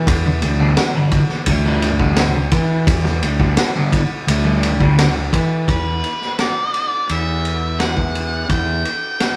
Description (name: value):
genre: psychedelic rock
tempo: 85 BPM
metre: 4/4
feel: straight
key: E minor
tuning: A4 = 435 Hz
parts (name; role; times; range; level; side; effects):
- fuzz fingered electric bass; bass; 0.0-8.8 s; D2 to E3; -21 LUFS; equal; overdrive
- analog drone; drone; 0.0-5.8 s; none; barely audible; none; none
- vintage drum kit; drums; 0.1-9.4 s; kick drum, ride cymbal, snare drum; -22 LUFS; equal; none
- fuzz guitar; riff; 0.3-5.2 s; G2 to G3; -20 LUFS; equal; distortion, phaser
- octave-fuzz lead guitar; melody; 5.7-9.4 s; B4 to G5; -24 LUFS; equal; distortion
room: moderate studio reverb, RT60 0.7 s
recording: rough rehearsal-room recording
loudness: -17 LUFS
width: mono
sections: 0.0-5.7 A section; 5.7-9.4 B section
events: none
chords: 0.0 G; 5.7 Em